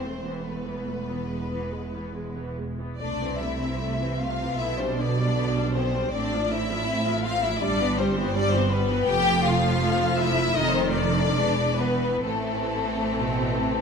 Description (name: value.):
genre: classical, slow romantic movement for string orchestra.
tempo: 66-83 BPM.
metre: 4/4.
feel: rubato.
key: unclear.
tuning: A4 = 442 Hz.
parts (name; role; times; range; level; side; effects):
rich studio violin section; melody; 0.0-13.8 s; A4 to G5; -28 LUFS; left 4 dB; none.
rich studio violin section; second line; 0.0-13.8 s; A3 to G4; -30 LUFS; left 2 dB; none.
rich studio viola section; accompaniment; 0.0-13.8 s; D3 to D4; -30 LUFS; right 1 dB; none.
warm studio cello section; bass; 0.0-13.8 s; E2 to C3; -31 LUFS; right 3 dB; none.
warm studio double bass section; bass; 0.0-13.8 s; E1 to C2; -30 LUFS; right 3 dB; none.
room: wet recital hall reverb, RT60 1.2 s.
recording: dark, warm production.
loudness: -23 LUFS.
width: side -6 dB against mid.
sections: 0.0-13.8 A section.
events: none.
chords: 0.0 Esus4; 1.3 E; 3.0 Am/C; 4.6 G/B; 6.1 F/A; 7.6 Em/G; 9.1 F; 10.6 F7; 11.4 E7; 12.2 Am.